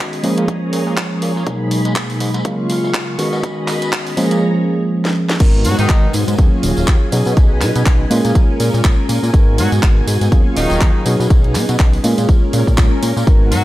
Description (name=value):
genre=filtered disco house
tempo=122 BPM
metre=4/4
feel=swing 57% on 16ths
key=G# dorian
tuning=A4 = 438 Hz
part: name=tine electric piano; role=accompaniment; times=0.0-13.6 s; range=B2 to A#4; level=-18 LUFS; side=right 1 dB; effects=phaser, sidechain pumping, low-pass filter
part: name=string machine, full ensemble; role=sustained chords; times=0.0-13.6 s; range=F#3 to C#6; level=-25 LUFS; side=equal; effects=ensemble chorus, vintage 12-bit sampler grit, sidechain pumping, low-pass filter
part: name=fat analog bass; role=bass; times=0.0-13.6 s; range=D#1 to B2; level=-19 LUFS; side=equal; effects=sidechain pumping, high-pass filter, low-pass filter
part: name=house drum kit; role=drums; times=0.1-13.6 s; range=crash cymbal, handclaps, hi-hat, ride cymbal, snare drum, tambourine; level=-23 LUFS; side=equal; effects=none
part: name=tambourine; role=percussion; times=0.2-13.6 s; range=none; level=-34 LUFS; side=right 1 dB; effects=sidechain pumping on perc, low-pass filter on perc
part: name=electronic kick drum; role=drums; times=0.5-13.4 s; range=none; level=-12 LUFS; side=equal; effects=high-pass filter on kick, high-pass filter on room
part: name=bright horn section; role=melody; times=5.6-6.1, 9.6-13.6 s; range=D#3 to F#4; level=-22 LUFS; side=equal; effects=vintage 12-bit sampler grit, sidechain pumping, low-pass filter
room=light reverb, digital ambience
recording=none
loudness=-12 LUFS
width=side -16 dB against mid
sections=0.0-5.4 A section; 5.4-13.6 B section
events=build-up 0.0-5.4; drum fill 5.0-5.4; drop 5.4-13.6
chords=0.2 A#m7; 1.5 G#m7; 2.5 D#m11; 3.2 B6; 4.2 A#m7; 5.4 G#m7; 6.4 D#m11; 7.1 B6; 8.1 A#m7; 9.3 G#m7; 10.3 D#m11; 11.1 B6; 12.0 A#m7